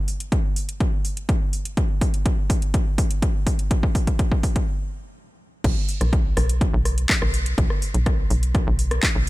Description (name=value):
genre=melodic techno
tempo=124 BPM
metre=4/4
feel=straight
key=unclear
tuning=A4 = 440 Hz
part: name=house drum kit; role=drums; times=0.1-9.3 s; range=crash cymbal, handclaps, hi-hat, rim click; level=-27 LUFS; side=equal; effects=overdrive
part: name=electronic kick drum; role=drums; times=0.3-9.1 s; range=none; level=-21 LUFS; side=equal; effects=overdrive
part: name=tight sequencer bass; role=bass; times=5.6-9.3 s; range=B1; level=-22 LUFS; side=equal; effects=sidechain pumping
room=little or no reverb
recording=none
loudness=-19 LUFS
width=side -19 dB against mid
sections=0.0-5.6 A section; 5.6-9.3 B section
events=build-up 0.0-5.6; drum fill 0.0-4.7; stop 4.7-5.6; drop 5.6-9.3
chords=none